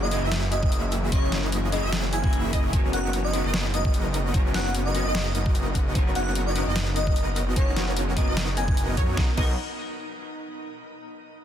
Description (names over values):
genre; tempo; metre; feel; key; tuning
future bass; 149 BPM; 4/4; swing 55% on 16ths, half-time; B major; A4 = 438 Hz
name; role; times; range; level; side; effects
airy dreamy lead; melody; 0.0-8.7 s; C#5 to G#5; -32 LUFS; equal; chorus, cassette tape, sidechain pumping, digital delay
semi-hollow electric guitar; accompaniment; 0.0-9.5 s; B3 to D#5; -34 LUFS; left 3 dB; analog chorus, sidechain pumping, ping-pong delay
shimmering ambient pad; sustained chords; 0.0-9.4 s; E3 to A#4; -39 LUFS; equal; none
wide unison pluck; arpeggios; 0.0-9.5 s; C#5 to E5; -38 LUFS; right 2 dB; none
dense compressed supersaw; riff; 0.0-9.5 s; A#3 to E5; -32 LUFS; right 1 dB; sidechain pumping
wide detuned saw bass; bass; 0.0-9.6 s; F#1 to F#2; -27 LUFS; equal; chorus, sidechain pumping
dubstep drum kit; drums; 0.1-9.5 s; crash cymbal, hi-hat, snare drum; -32 LUFS; equal; overdrive, studio reverb
electronic kick drum; drums; 0.6-9.5 s; none; -23 LUFS; equal; overdrive, studio reverb
room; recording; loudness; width
digital ambience; dense, heavily limited modern master; -22 LUFS; side -10 dB against mid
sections
0.0-9.2 A section; 9.2-10.8 B section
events
drop 0.0-9.2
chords
0.0 F#13; 2.7 Bmaj9/F#; 9.2 Bmaj7